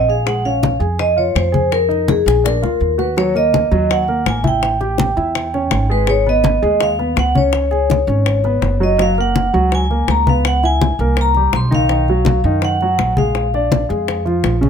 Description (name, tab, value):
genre	Afro-Cuban jazz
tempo	165 BPM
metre	4/4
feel	straight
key	Bb minor, Eb minor from 3.2 s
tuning	A4 = 440 Hz
part	warm concert grand piano	accompaniment	0.0-14.7 s	Db3 to Ab5	-20 LUFS	right 1 dB	none
part	upright bass	bass	0.0-14.7 s	Gb1 to F#2	-18 LUFS	right 1 dB	none
part	vibraphone with medium hard mallets	melody	0.1-14.4 s	Ab4 to C6	-17 LUFS	left 1 dB	none
part	bongos	percussion	0.3-14.6 s	none	-23 LUFS	left 8 dB	none
part	congas	percussion	0.3-14.7 s	none	-21 LUFS	left 3 dB	none
room	little or no reverb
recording	close, detailed microphones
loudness	-13 LUFS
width	side -7 dB against mid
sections	0.0-3.2 A section; 3.2-14.7 B section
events	drum fill 2.3-3.2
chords	0.3 Bbm9; 1.7 Bb7sus4; 2.5 Bb; 3.2 Ebm; 4.6 A7; 6.1 Abm; 7.5 Db5; 9.0 Gbadd9; 10.4 Dbm7; 11.2 C5; 11.9 Bmaj7; 13.4 Bb7